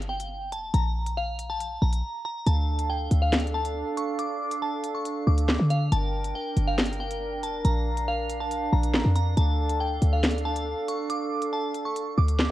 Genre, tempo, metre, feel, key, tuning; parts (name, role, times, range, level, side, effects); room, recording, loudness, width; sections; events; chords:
hip hop, drill; 139 BPM; 4/4; half-time; D harmonic minor; A4 = 440 Hz
glassy synth bell; melody; 0.0-12.5 s; F5 to D6; -31 LUFS; left 1 dB; chorus, phaser, low-pass filter
short 808-style bass; bass; 0.0-12.5 s; F1 to D3; -25 LUFS; equal
drill drum kit; drums; 0.0-12.5 s; handclaps, hi-hat, snare drum; -28 LUFS; equal
mellow large flute ensemble; sustained chords; 2.5-12.5 s; D4 to G5; -32 LUFS; right 3 dB
little or no reverb; worn, warbling old tape, cassette tape, warbly pitch drift; -24 LUFS; side -14 dB against mid
0.0-2.5 A section; 2.5-12.5 B section
break 2.0-2.5
0.0 Fadd9; 0.7 Bb5; 2.5 Dm; 5.9 Gm; 7.6 Bb; 9.4 Dm